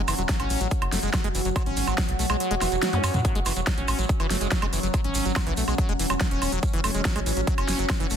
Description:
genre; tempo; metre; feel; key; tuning
psychedelic trance; 142 BPM; 4/4; straight; F# minor; A4 = 439 Hz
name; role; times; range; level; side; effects
overtone-sweeping drone; sustained chords; 0.0-8.2 s; F#3 to F#4; -30 LUFS; equal; chorus, built-in reverb, sidechain pumping
round analog bass; bass; 0.0-8.2 s; E1 to F#2; -28 LUFS; equal; none
liquid acid bass; riff; 0.1-8.2 s; E3 to C#4; -31 LUFS; equal; chorus, auto-pan, sidechain pumping, tape echo
big-room dance drum kit; drums; 0.1-8.2 s; hi-hat, snare drum, toms, woodblock; -29 LUFS; right 1 dB; overdrive
shekere; percussion; 0.1-8.2 s; none; -37 LUFS; right 4 dB; none
electronic kick drum; drums; 0.3-8.0 s; none; -26 LUFS; equal; overdrive
swell and zap; sound effects; 2.7-3.2 s; none; -35 LUFS; left 4 dB; none
room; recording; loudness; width
digital ambience; dense, heavily limited modern master; -22 LUFS; side -8 dB against mid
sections
0.0-8.2 A section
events
kick drops out 2.4-3.2; swell 2.7-3.2; drum fill 2.8-3.2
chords
0.0 F#5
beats
0.29 0.71 1.14 | 1.56 1.98 2.40 2.83 | 3.25 3.67 4.09 4.52 | 4.94 5.36 5.78 6.21 | 6.63 7.05 7.47 7.90

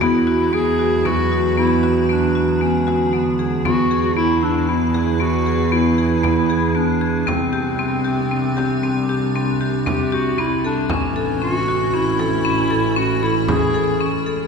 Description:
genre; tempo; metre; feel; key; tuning
contemporary instrumental, chamber music in an uneven meter; 116 BPM; 7/4; straight; E mixolydian; A4 = 441 Hz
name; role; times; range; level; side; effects
mellow clarinet; second line; 0.0-14.2 s; B3 to G#4; -21 LUFS; equal; none
icy glass pad; sustained chords; 0.0-14.5 s; C3 to G#4; -27 LUFS; right 1 dB; chorus, built-in reverb
marimba with hard mallets; arpeggios; 0.0-14.5 s; B3 to A4; -20 LUFS; left 2 dB; none
rich double bass; bass; 0.0-14.5 s; A1 to E2; -23 LUFS; right 5 dB; none
frame drum; percussion; 0.0-14.1 s; none; -30 LUFS; right 2 dB; none
room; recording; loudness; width
wet cathedral reverb, RT60 4.7 s; recorded in a church or concert hall; -16 LUFS; side -5 dB against mid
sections
0.0-3.6 A section; 3.6-14.5 B section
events
none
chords
0.0 Eadd9; 3.6 E; 7.3 Csus2; 10.9 A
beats
| 0.02 0.54 1.05 1.57 2.09 2.61 3.13 | 3.65 4.17 4.68 5.20 5.72 6.24 6.76 | 7.28 7.79 8.31 8.83 9.35 9.87 10.38 | 10.90 11.42 11.94 12.46 12.97 13.49 14.01

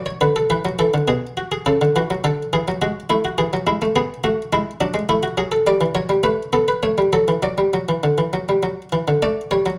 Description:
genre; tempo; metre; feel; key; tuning
classical, baroque-style two-part invention for harpsichord; 104 BPM; 3/4; straight; B minor, D major from 5.7 s; A4 = 440 Hz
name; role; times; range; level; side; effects
buff-stop harpsichord; solo; 0.0-9.8 s; B2 to D5; -20 LUFS; equal; none
room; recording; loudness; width
moderate studio reverb, RT60 0.8 s; none; -20 LUFS; mono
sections
0.0-9.2 A section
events
none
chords
0.0 Bm/F#; 0.5 E; 1.7 A/C#; 2.2 D; 3.4 Eadd9; 4.0 Bm; 5.1 A5; 5.7 Em; 6.2 Asus2; 6.8 A; 7.4 D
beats
| 0.50 1.08 1.66 | 2.24 2.81 3.38 | 3.95 4.52 5.09 | 5.67 6.25 6.83 | 7.43 8.03 8.63 | 9.22

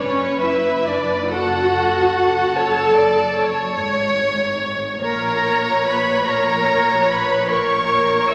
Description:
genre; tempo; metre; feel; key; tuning
classical, slow romantic movement for string orchestra; 49 BPM (dotted quarters); 12/8; rubato; F# minor; A4 = 440 Hz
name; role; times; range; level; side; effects
warm chamber violin section; melody; 0.0-8.3 s; A4 to D5; -23 LUFS; equal; none
clear chamber violin section; second line; 0.0-8.3 s; C#5 to E6; -23 LUFS; equal; none
warm studio viola section; accompaniment; 0.0-8.3 s; C#4 to E5; -23 LUFS; equal; none
warm chamber cello section; bass; 0.0-8.3 s; F#2 to A#2; -34 LUFS; equal; none
warm symphonic double bass section; bass; 0.0-8.3 s; F#1 to A#1; -34 LUFS; equal; none
room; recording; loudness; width
wet scoring stage reverb, RT60 1.6 s; vinyl crackle; -18 LUFS; mono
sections
0.0-8.3 A section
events
none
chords
0.0 F#m; 5.0 A#m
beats
| 0.03 1.31 2.56 3.79 | 5.02 6.26 7.49

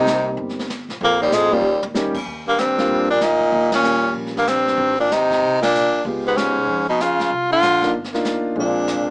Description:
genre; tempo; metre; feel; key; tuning
jazz, small-group swing and bop; 190 BPM; 4/4; swing 62% on 8ths; Eb major; A4 = 440 Hz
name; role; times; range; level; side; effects
bright tenor saxophone; melody; 0.0-9.1 s; G3 to F4; -17 LUFS; equal; none
bright baritone saxophone; second line; 0.0-9.1 s; Eb2 to D3; -22 LUFS; equal; none
warm concert grand piano; accompaniment; 0.0-9.1 s; G3 to G4; -23 LUFS; equal; none
upright bass; bass; 0.0-9.1 s; G1 to Bb2; -33 LUFS; equal; none
vintage brush drum kit; drums; 0.1-9.1 s; brushed snare drum, crash cymbal, hi-hat, kick drum, ride cymbal, snare drum, toms; -29 LUFS; equal; none
room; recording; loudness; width
light reverb; small speaker sound; -16 LUFS; side -29 dB against mid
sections
0.0-2.3 A section; 2.3-9.1 B section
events
drum fill 1.6-2.0; band accent 3.7, 5.6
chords
0.0 Cm7; 1.0 Bbm; 1.6 Eb7; 2.3 Ebmaj9; 3.5 Eb9; 4.8 Abadd9; 6.0 Db7#11; 7.3 Cm11; 8.6 Bb9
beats
0.06 0.38 0.69 | 1.01 1.32 1.64 1.95 | 2.27 2.58 2.90 3.21 | 3.53 3.84 4.16 4.47 | 4.79 5.10 5.42 5.73 | 6.05 6.36 6.68 6.99 | 7.31 7.62 7.94 8.25 | 8.57 8.88

